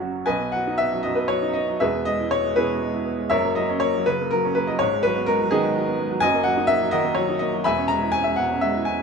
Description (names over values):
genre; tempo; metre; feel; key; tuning
classical, romantic character piece for solo piano; 68-86 BPM (dotted quarters); 6/8; rubato; B major; A4 = 439 Hz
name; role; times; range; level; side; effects
clear upright piano; solo; 0.0-9.0 s; E1 to B5; -20 LUFS; equal; none
room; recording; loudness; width
light reverb; minimal, uncompressed stereo recording; -20 LUFS; side -5 dB against mid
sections
0.3-9.0 A section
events
none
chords
0.3 B; 1.8 E; 3.3 F#; 4.8 G#m7; 6.2 D#m/F#; 7.7 C#m7/E